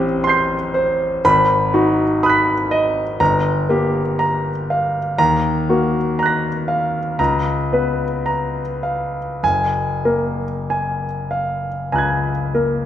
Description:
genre	classical, impressionist solo piano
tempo	48-62 BPM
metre	4/4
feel	rubato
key	F# major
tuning	A4 = 441 Hz
part	clear grand piano	solo	0.0-12.9 s	F#1 to C7	-16 LUFS	equal	none
room	wet recital hall reverb, RT60 1.6 s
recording	none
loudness	-16 LUFS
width	side -10 dB against mid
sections	0.0-12.9 A section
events	none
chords	0.0 Am7; 1.2 G#m7; 3.2 Gm7; 5.2 D#madd9; 7.2 C#6; 9.4 F#maj9

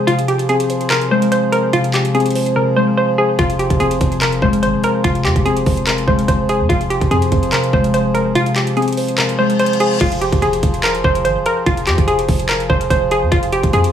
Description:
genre	hip hop, trap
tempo	145 BPM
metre	4/4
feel	half-time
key	F minor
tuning	A4 = 439 Hz
part	hollow square pluck	melody	0.0-13.9 s	F4 to C5	-17 LUFS	equal	chorus, low-pass filter, digital delay
part	muted felt-like synth keys	accompaniment	0.0-10.0 s	C3 to C5	-18 LUFS	left 3 dB	chorus, low-pass filter
part	pedal harmonium	sustained chords	0.0-13.9 s	F3 to C5	-23 LUFS	right 4 dB	none
part	trap drum kit	drums	0.1-13.9 s	crash cymbal, handclaps, hi-hat, kick drum	-19 LUFS	equal	none
part	warm 808-style bass	bass	3.4-13.9 s	Eb1 to F2	-21 LUFS	equal	none
part	reverse cymbal	sound effects	9.3-10.0 s	none	-25 LUFS	left 5 dB	none
room	light reverb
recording	studio reverb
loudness	-13 LUFS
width	side -9 dB against mid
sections	0.0-10.0 A section; 10.0-13.9 B section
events	break 0.0-3.4; drums muted 2.6-3.4; kick muted 8.4-10.0; reverse cymbal 9.3-10.0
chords	0.0 Fm

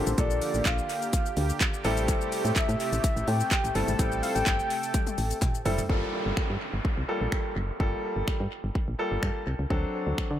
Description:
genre	dance-pop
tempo	126 BPM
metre	4/4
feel	straight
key	G dorian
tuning	A4 = 440 Hz
part	soft octave-layered synth lead	melody	0.0-5.6 s	C5 to A5	-32 LUFS	left 1 dB	chorus, dub echo
part	clear concert grand piano	accompaniment	0.0-10.3 s	F3 to A4	-32 LUFS	left 1 dB	sidechain pumping, dub echo
part	warm analog pad	sustained chords	0.0-5.9 s	C3 to A4	-34 LUFS	right 1 dB	chorus, tremolo, sidechain pumping
part	solid FM bass	bass	0.0-10.4 s	F#1 to D3	-29 LUFS	equal	sidechain pumping
part	house drum kit	drums	0.1-10.3 s	finger snaps, handclaps, hi-hat, kick drum, shaker, toms	-28 LUFS	equal	dub echo
part	group handclap	percussion	0.7-5.5 s	none	-41 LUFS	left 4 dB	none
part	downlifter	sound effects	5.9-9.7 s	none	-38 LUFS	equal	none
room	light reverb, digital ambience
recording	echo-heavy mix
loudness	-25 LUFS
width	side -11 dB against mid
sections	0.0-5.9 A section; 5.9-10.4 B section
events	drum fill 4.9-5.9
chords	0.0 Bbmaj7; 1.8 Am7; 5.9 Gm9; 9.7 D7

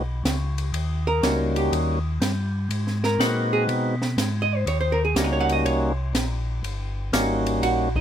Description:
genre	soul jazz organ trio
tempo	122 BPM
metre	4/4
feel	swing 67% on 8ths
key	unclear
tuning	A4 = 440 Hz
part	percussive tonewheel organ	melody	0.0-7.9 s	G3 to B4	-24 LUFS	left 1 dB	slow rotary speaker
part	tonewheel organ	bass	0.0-8.0 s	G1 to B2	-25 LUFS	equal	slow rotary speaker
part	open jazz drum kit	drums	0.3-8.0 s	hi-hat, kick drum, ride cymbal, snare drum	-29 LUFS	equal	none
part	archtop guitar, miked and amplified	accompaniment	1.1-8.0 s	Eb4 to F#5	-24 LUFS	right 2 dB	none
room	little or no reverb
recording	close, detailed microphones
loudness	-21 LUFS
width	side -10 dB against mid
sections	0.0-8.0 A section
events	hollow-body jazz guitar solo 0.0-8.0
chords	0.0 N.C.; 0.7 Eb7#9; 2.7 Ab7#9; 4.7 Eb7#9

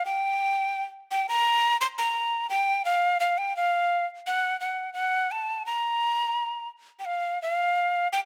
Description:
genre	andean folk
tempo	85 BPM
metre	2/4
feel	straight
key	unclear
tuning	A4 = 442 Hz
part	breathy quena	solo	0.0-8.2 s	F5 to C6	-26 LUFS	equal	none
room	light reverb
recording	close, detailed microphones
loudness	-26 LUFS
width	mono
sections	0.0-1.4 A section; 1.4-8.3 B section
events	none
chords	none

